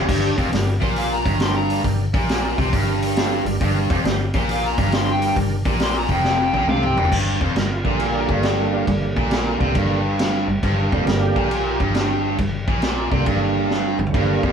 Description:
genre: blues rock power trio and southern rock.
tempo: 137 BPM.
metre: 4/4.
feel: swing 66% on 8ths.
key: G minor.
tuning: A4 = 440 Hz.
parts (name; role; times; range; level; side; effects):
overdriven slide guitar; melody; 0.0-7.1 s; G4 to C6; -24 LUFS; left 2 dB; none.
overdriven tonewheel organ; sustained chords; 0.0-14.5 s; D3 to C5; -27 LUFS; right 4 dB; slow rotary speaker, chorus vibrato.
overdriven electric guitar; riff; 0.0-14.5 s; F2 to C3; -22 LUFS; equal; none.
vintage muted fingered electric bass; bass; 0.0-14.5 s; F1 to C2; -24 LUFS; equal; none.
vintage drum kit; drums; 0.0-14.5 s; crash cymbal, hi-hat, kick drum, snare drum, toms; -23 LUFS; equal; none.
room: wet studio reverb, RT60 0.8 s.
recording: band playing live in one room.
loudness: -17 LUFS.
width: side -7 dB against mid.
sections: 0.0-7.1 A section; 7.1-14.5 A section.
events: electric slide guitar solo 0.0-7.1; drum fill 6.2-7.1, 13.7-14.1; tonewheel organ solo 7.1-14.5.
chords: 0.0 Gm.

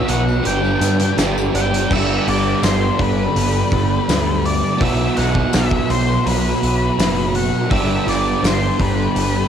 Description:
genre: rock, shoegaze and dream pop.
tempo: 83 BPM.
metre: 4/4.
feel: straight.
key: G major.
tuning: A4 = 436 Hz.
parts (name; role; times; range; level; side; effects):
octave-fuzz lead guitar; melody; 0.0-9.5 s; B4 to G5; -23 LUFS; left 3 dB; distortion, cassette tape, tape echo.
string machine, violins; sustained chords; 0.0-9.5 s; F#4 to E6; -28 LUFS; left 1 dB; ensemble chorus.
crunchy overdriven guitar; riff; 0.0-9.5 s; G2 to G4; -21 LUFS; right 8 dB; reverse reverb.
thick fuzz guitar; riff; 0.0-9.5 s; G2 to B3; -24 LUFS; left 12 dB; distortion, ensemble chorus.
growling picked electric bass; bass; 0.0-9.4 s; F#1 to G2; -21 LUFS; equal; overdrive.
loose indie drum kit; drums; 0.1-9.3 s; crash cymbal, hi-hat, kick drum, snare drum; -22 LUFS; equal; none.
tambourine; percussion; 0.1-8.6 s; none; -32 LUFS; left 17 dB; none.
room: little or no reverb.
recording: home recording on cassette.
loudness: -15 LUFS.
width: side -8 dB against mid.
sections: 0.0-1.9 A section; 1.9-9.5 B section.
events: none.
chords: 0.4 Gadd9; 4.8 Bsus4; 7.7 Gadd9.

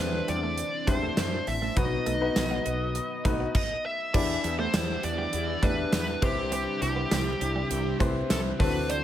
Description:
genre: 1980s-style pop.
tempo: 101 BPM.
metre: 4/4.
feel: straight.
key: E minor.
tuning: A4 = 441 Hz.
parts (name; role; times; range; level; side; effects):
dark smooth lead guitar; melody; 0.0-9.0 s; G4 to E5; -31 LUFS; equal; overdrive.
bright concert grand piano; accompaniment; 0.0-9.0 s; B2 to B5; -33 LUFS; left 4 dB; none.
string machine, full ensemble; sustained chords; 0.0-9.0 s; C3 to F#5; -36 LUFS; equal; ensemble chorus.
woody fretless electric bass; bass; 0.0-9.0 s; A1 to F#2; -32 LUFS; equal; ensemble chorus.
twelve-string electric guitar; riff; 0.3-9.0 s; F#3 to D4; -38 LUFS; right 5 dB; lush chorus, digital delay.
gated 80s drum kit; drums; 0.3-9.0 s; crash cymbal, hi-hat, kick drum, snare drum, tambourine; -28 LUFS; equal; gated reverb.
high-gain distorted guitar; accompaniment; 4.1-9.0 s; C3 to E4; -40 LUFS; right 1 dB; distortion, lush chorus.
room: light reverb, small room ambience.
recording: none.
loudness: -25 LUFS.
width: side -11 dB against mid.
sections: 0.0-4.1 A section; 4.1-9.0 B section.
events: none.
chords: 0.0 Cadd9/E; 1.8 B; 4.1 Em7; 6.2 Cmaj7.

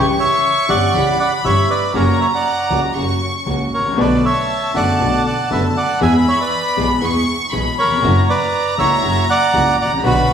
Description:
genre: tango.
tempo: 119 BPM.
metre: 4/4.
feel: rubato.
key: unclear.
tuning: A4 = 440 Hz.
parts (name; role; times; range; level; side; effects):
bandoneon; melody; 0.0-10.3 s; F#4 to G#5; -17 LUFS; right 1 dB; none.
warm studio violin section; second line; 0.0-10.3 s; A5 to C#6; -21 LUFS; equal; none.
clear grand piano; accompaniment; 0.0-10.3 s; F#1 to G#4; -20 LUFS; left 2 dB; none.
rich studio string section; stabs; 0.0-10.3 s; G3 to A4; -27 LUFS; right 2 dB; none.
warm double bass; bass; 0.0-10.3 s; F#1 to E2; -21 LUFS; equal; none.
room: wet large studio reverb, RT60 1.3 s.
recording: heard from further back in the room.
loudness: -14 LUFS.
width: side -8 dB against mid.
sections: 0.0-10.3 A section.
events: none.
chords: 0.0 C#dim; 1.9 F#; 4.0 Bm7; 6.0 E; 8.0 F#7.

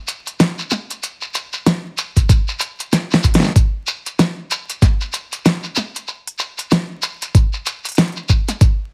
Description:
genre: glitch hop.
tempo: 95 BPM.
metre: 4/4.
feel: swing 59% on 16ths.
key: none.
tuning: none.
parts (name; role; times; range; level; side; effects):
pop drum kit; drums; 0.1-8.8 s; hi-hat, snare drum; -19 LUFS; equal; small room ambience.
shekere; percussion; 0.1-8.8 s; none; -26 LUFS; equal; none.
electronic kick drum; drums; 2.2-8.8 s; none; -15 LUFS; equal; small room ambience.
room: light reverb.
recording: heavily compressed radio sound, vinyl crackle.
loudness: -18 LUFS.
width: mono.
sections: 0.0-8.9 A section.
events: drum fill 2.9-3.6.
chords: none.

